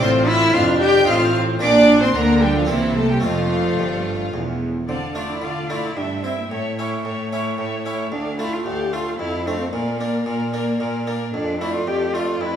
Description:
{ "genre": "classical, baroque-style concerto movement with solo episodes", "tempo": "112 BPM", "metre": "3/4", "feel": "straight", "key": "F major, D minor from 4.9 s", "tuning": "A4 = 441 Hz", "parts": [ { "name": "rich chamber violin section", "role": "melody", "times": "0.0-12.6 s", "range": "E5 to G6", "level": "-30 LUFS", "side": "left 3 dB", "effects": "none" }, { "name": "warm cello", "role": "melody", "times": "0.0-12.6 s", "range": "E3 to G4", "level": "-22 LUFS", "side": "left 2 dB", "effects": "none" }, { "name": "warm chamber violin section", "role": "second line", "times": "0.0-12.6 s", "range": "E4 to G5", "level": "-24 LUFS", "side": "right 2 dB", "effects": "none" }, { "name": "harpsichord", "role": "accompaniment", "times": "0.0-12.6 s", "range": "D2 to C5", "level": "-27 LUFS", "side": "right 1 dB", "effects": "none" }, { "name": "rich chamber viola section", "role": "accompaniment", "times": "0.0-12.6 s", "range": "A3 to E5", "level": "-26 LUFS", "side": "right 2 dB", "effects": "none" }, { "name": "rich chamber cello section", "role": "bass", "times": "0.0-12.6 s", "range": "D2 to D3", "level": "-26 LUFS", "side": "right 2 dB", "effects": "none" }, { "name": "rich chamber double bass section", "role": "bass", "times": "0.0-4.9 s", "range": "E1 to D2", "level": "-27 LUFS", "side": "right 2 dB", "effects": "none" } ], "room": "moderate scoring stage reverb, RT60 1.6 s", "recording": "small room ambience", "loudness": "-17 LUFS", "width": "side -9 dB against mid", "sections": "0.0-4.9 A section; 4.9-12.6 B section", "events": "none", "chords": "0.0 F/A; 1.1 F7/A; 1.6 Bb; 2.7 C7; 3.2 F; 4.9 Dm; 6.0 Gm6; 6.5 A7; 8.1 Dm; 9.2 F; 9.7 Bb; 11.3 Dm/F", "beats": "| 0.01 0.55 1.08 | 1.62 2.16 2.70 | 3.25 3.80 4.34 | 4.89 5.43 5.97 | 6.51 7.05 7.58 | 8.12 8.66 9.20 | 9.73 10.27 10.80 | 11.34 11.88 12.42" }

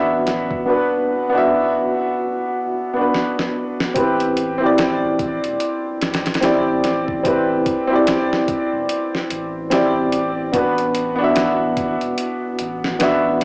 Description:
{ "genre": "trip hop", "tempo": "73 BPM", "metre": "4/4", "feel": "swing 60% on 16ths", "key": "A dorian", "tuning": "A4 = 440 Hz", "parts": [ { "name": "warm upright piano", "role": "accompaniment", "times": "0.0-13.4 s", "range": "B3 to E5", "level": "-17 LUFS", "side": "equal", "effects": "harmonic tremolo, tape echo" }, { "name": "round analog bass", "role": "bass", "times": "0.0-13.4 s", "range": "E1 to A1", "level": "-33 LUFS", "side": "equal", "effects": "none" }, { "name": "dusty soul sampler-style drum kit", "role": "drums", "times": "0.3-13.4 s", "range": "hi-hat, kick drum, snare drum", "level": "-24 LUFS", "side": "equal", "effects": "cassette tape" } ], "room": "moderate small room reverb, RT60 0.5 s", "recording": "home recording on cassette, small speaker sound", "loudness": "-16 LUFS", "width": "side -38 dB against mid", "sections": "0.0-4.0 A section; 4.0-13.4 B section", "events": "drum fill 3.1-4.0", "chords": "0.0 Bm; 4.0 Am7; 10.5 Bm", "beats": "| 0.67 1.49 2.32 3.14 | 3.96 4.78 5.60 6.42 | 7.25 8.07 8.89 9.71 | 10.54 11.36 12.18 13.00" }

